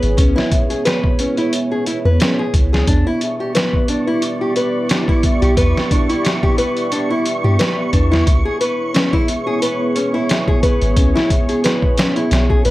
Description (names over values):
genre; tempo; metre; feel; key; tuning
trip hop; 89 BPM; 4/4; swing 55% on 16ths; unclear; A4 = 438 Hz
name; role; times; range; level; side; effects
dark analog pad; sustained chords; 0.0-12.7 s; B3 to D5; -21 LUFS; right 2 dB; chorus
nylon-string guitar; arpeggios; 0.0-12.7 s; C#4 to B4; -19 LUFS; left 2 dB; analog delay
soft 808-style bass; bass; 0.0-12.7 s; G#1 to G2; -16 LUFS; equal; none
trip hop sampler-style drum kit; drums; 0.0-12.7 s; hi-hat, kick drum, snare drum; -17 LUFS; equal; none
flickering grainy texture; texture; 3.2-12.7 s; C#6; -28 LUFS; right 3 dB; built-in reverb
room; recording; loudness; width
digital ambience; dry, gritty hardware recording, vinyl crackle; -14 LUFS; side -17 dB against mid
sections
0.0-12.7 A section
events
none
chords
0.0 C#m7; 2.9 Em7; 8.3 C#m7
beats
| 0.18 0.85 1.53 2.20 | 2.88 3.55 4.22 4.90 | 5.57 6.25 6.92 7.59 | 8.27 8.94 9.62 10.29 | 10.97 11.64 12.31